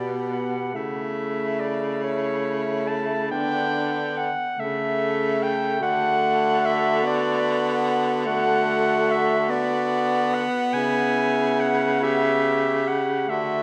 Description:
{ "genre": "classical, lyrical piece for single-reed quartet", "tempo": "48 BPM (dotted quarters)", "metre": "6/8", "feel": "uneven beats, rubato", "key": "D major", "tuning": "A4 = 441 Hz", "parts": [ { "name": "bright clarinet", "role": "melody", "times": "0.0-13.6 s", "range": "C#5 to A5", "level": "-28 LUFS", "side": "equal", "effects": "none" }, { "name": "clear alto saxophone", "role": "second line", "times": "0.0-13.6 s", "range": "D4 to A4", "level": "-31 LUFS", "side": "equal", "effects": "none" }, { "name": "bright tenor saxophone", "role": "accompaniment", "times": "0.0-13.6 s", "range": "A3 to B3", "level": "-29 LUFS", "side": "equal", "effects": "none" }, { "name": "warm baritone saxophone", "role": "bass", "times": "0.0-13.6 s", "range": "B2 to D3", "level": "-29 LUFS", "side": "equal", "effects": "none" } ], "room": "wet concert hall reverb, RT60 2.0 s", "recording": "dark, warm production", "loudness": "-23 LUFS", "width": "mono", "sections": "0.0-13.6 A section", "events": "none", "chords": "0.0 G/B; 0.8 A/C#; 3.3 Gmaj7/D; 4.6 A/C#; 5.8 D; 8.3 Dadd9; 9.5 D6; 10.8 C#m7", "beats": "| 0.76 2.02 | 3.32 4.59 | 5.82 7.05 | 8.26 9.51 | 10.75 12.02 | 13.28" }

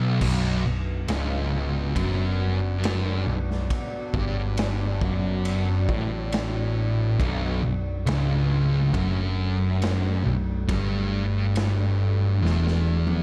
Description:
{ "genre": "stoner and doom metal", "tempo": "69 BPM", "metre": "4/4", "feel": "straight", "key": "B minor", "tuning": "A4 = 440 Hz", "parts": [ { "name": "analog drone", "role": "sustained chords", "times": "0.0-13.2 s", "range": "F#3 to D4", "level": "-37 LUFS", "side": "equal", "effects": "chorus" }, { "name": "thick fuzz guitar", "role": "riff", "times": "0.0-13.2 s", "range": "B1 to A2", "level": "-29 LUFS", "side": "equal", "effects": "distortion" }, { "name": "thick fuzz guitar", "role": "riff", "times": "0.0-13.2 s", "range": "B1 to A2", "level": "-30 LUFS", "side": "equal", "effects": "distortion" }, { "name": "hollow-body short-scale picked electric bass", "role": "bass", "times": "0.2-13.2 s", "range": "B0 to A1", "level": "-31 LUFS", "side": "equal", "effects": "overdrive" }, { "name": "raw garage drum kit", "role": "drums", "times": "0.2-13.2 s", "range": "crash cymbal, kick drum, ride cymbal, snare drum, toms", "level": "-34 LUFS", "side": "equal", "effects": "none" } ], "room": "light reverb", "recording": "dark, warm production", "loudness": "-25 LUFS", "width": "mono", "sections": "0.2-13.2 A section", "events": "break 0.0; drum fill 12.4-13.2", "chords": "0.2 Bm", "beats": "| 0.21 1.08 1.96 2.83 | 3.70 4.57 5.45 6.32 | 7.19 8.06 8.94 9.81 | 10.68 11.55 12.42" }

